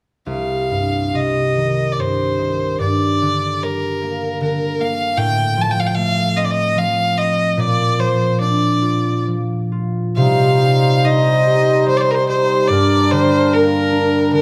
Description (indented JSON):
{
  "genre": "celtic folk, Celtic slow air",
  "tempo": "66-77 BPM",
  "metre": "3/4",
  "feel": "rubato",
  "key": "C dorian",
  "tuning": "A4 = 440 Hz",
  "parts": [
    { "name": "rich fiddle", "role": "melody", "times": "0.3-14.4 s", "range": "Bb4 to A5", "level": "-20 LUFS", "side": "equal", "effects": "none" },
    { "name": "concert harp", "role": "accompaniment", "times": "0.3-14.4 s", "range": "C2 to G4", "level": "-20 LUFS", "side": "equal", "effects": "none" },
    { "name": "hand-pumped harmonium", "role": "sustained chords", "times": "10.2-14.4 s", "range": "G3 to C5", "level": "-23 LUFS", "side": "equal", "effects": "none" }
  ],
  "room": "light reverb",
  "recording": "close, detailed microphones",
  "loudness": "-17 LUFS",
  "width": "mono",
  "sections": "0.3-10.2 A section; 10.2-14.4 A section",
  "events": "none",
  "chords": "0.3 Cm; 2.8 Gm; 5.2 F/A; 7.6 Bb; 10.2 Cm; 12.7 Gm",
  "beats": "| 0.26 1.13 1.97 | 2.79 3.61 4.40 | 5.18 5.97 6.77 | 7.58 8.41 9.28 | 10.18 11.04 11.87 | 12.70 13.52 14.32"
}